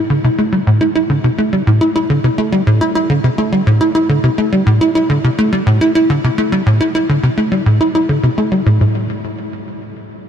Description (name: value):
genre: ambient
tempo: 105 BPM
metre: 4/4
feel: straight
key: A minor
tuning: A4 = 435 Hz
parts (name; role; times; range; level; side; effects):
- tight sequencer bass; solo; 0.0-9.1 s; A2 to E4; -12 LUFS; equal; lush chorus, ping-pong delay
room: moderate huge ambient reverb, RT60 7.3 s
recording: none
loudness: -11 LUFS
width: side -8 dB against mid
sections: 0.0-8.8 A section; 8.8-10.3 B section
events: none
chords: none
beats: 0.24 0.81 1.38 | 1.95 2.52 3.09 3.67 | 4.24 4.81 5.38 5.95 | 6.52 7.09 7.67 8.24 | 8.81